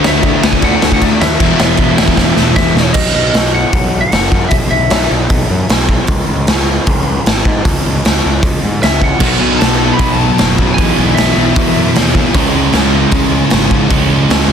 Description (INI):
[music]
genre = punk rock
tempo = 153 BPM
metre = 4/4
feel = straight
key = E major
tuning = A4 = 439 Hz
[part]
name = lightly driven lead guitar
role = melody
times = 0.0-5.1, 8.8-11.9 s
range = C#5 to B5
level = -18 LUFS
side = left 2 dB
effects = ping-pong delay
[part]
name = crunchy overdriven guitar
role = riff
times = 0.0-3.0, 9.2-14.5 s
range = E2 to D4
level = -16 LUFS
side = right 10 dB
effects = none
[part]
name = sludgy distorted guitar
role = riff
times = 0.0-3.0, 9.2-14.5 s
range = E2 to D4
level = -17 LUFS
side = left 10 dB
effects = overdrive
[part]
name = sludgy distorted guitar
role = riff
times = 0.0-3.0, 9.2-14.5 s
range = B2 to G#4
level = -19 LUFS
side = left 1 dB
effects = overdrive
[part]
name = raw garage drum kit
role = drums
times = 0.0-14.4 s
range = crash cymbal, hi-hat, kick drum, snare drum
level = -13 LUFS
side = equal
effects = none
[part]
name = fuzz picked electric bass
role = bass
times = 0.1-14.5 s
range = E1 to G#2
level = -16 LUFS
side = equal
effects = overdrive
[sound]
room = little or no reverb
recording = dense, heavily limited modern master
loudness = -9 LUFS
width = side -8 dB against mid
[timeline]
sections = 0.0-3.0 A section; 3.0-14.5 B section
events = drum fill 2.2-3.0; half time 3.0-14.5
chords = 0.0 D; 1.4 E; 3.0 B; 4.5 E5/B; 6.1 C#5; 9.2 B; 10.8 E/B; 12.3 C#m